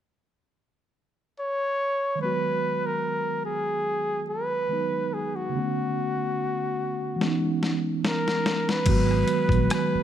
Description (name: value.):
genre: R&B, neo-soul.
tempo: 72 BPM.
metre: 4/4.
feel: swing 54% on 16ths.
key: G# minor.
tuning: A4 = 440 Hz.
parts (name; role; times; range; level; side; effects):
mellow flugelhorn; melody; 1.4-10.0 s; F#4 to C#5; -27 LUFS; equal; none.
mellow tine electric piano; accompaniment; 2.2-10.0 s; C#3 to F#4; -28 LUFS; right 2 dB; medium stereo tremolo.
boom bap sampler-style drum kit; drums; 7.2-9.9 s; crash cymbal, hi-hat, kick drum, rim click, snare drum; -27 LUFS; left 2 dB; none.
vintage muted fingered electric bass; bass; 8.9-10.0 s; G#1 to A#1; -26 LUFS; left 1 dB; none.
room: light reverb.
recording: none.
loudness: -23 LUFS.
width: side -10 dB against mid.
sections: 0.0-2.2 A section; 2.2-8.9 B section; 8.9-10.0 C section.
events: drum fill 7.2-8.9.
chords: 0.0 N.C.; 2.2 G#m7; 5.5 Bm9; 7.2 C#m9; 8.9 G#m9.